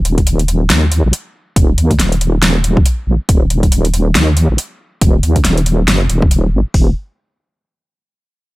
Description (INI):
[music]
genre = deep dubstep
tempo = 139 BPM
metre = 4/4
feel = swing 59% on 16ths, half-time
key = Eb minor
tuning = A4 = 439 Hz
[part]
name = wobble bass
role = bass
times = 0.0-6.9 s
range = Eb1 to Eb2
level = -12 LUFS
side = equal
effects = chorus
[part]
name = deep house drum kit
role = drums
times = 0.1-6.4 s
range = hi-hat, snare drum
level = -16 LUFS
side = equal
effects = none
[part]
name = deep house drum kit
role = drums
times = 0.2-6.9 s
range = hi-hat, kick drum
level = -13 LUFS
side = equal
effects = none
[sound]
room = digital ambience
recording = none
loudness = -11 LUFS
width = side -19 dB against mid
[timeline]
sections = 0.0-6.7 A section; 6.7-8.5 B section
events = none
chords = none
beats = 0.27 0.70 1.13 | 1.56 1.99 2.43 2.86 | 3.29 3.72 4.15 4.58 | 5.02 5.45 5.88 6.31 | 6.74